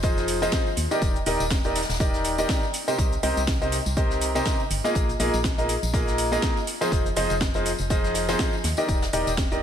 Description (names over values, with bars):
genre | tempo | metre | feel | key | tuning
piano house | 122 BPM | 4/4 | swing 56% on 16ths | unclear | A4 = 442 Hz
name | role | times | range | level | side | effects
clear grand piano | riff | 0.0-9.6 s | C3 to Eb5 | -25 LUFS | equal | sidechain pumping, ping-pong delay
organ-like FM bass | bass | 0.0-9.6 s | Eb1 to Eb2 | -29 LUFS | equal | sidechain pumping
electronic kick drum | drums | 0.0-9.5 s | none | -25 LUFS | equal | none
house drum kit | drums | 0.0-9.6 s | cabasa, hi-hat, snare drum | -31 LUFS | right 1 dB | none
warm soul drum kit | drums | 0.0-9.5 s | hi-hat, snare drum | -38 LUFS | left 2 dB | none
tambourine | percussion | 0.0-9.6 s | none | -38 LUFS | left 3 dB | none
room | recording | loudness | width
light reverb, small room ambience | none | -21 LUFS | side -9 dB against mid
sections
0.0-9.6 A section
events
none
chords
0.0 Fm7; 0.8 Ebmaj7; 3.0 Cm7; 5.0 Bb7sus4; 6.9 Fm7; 8.6 Ebmaj7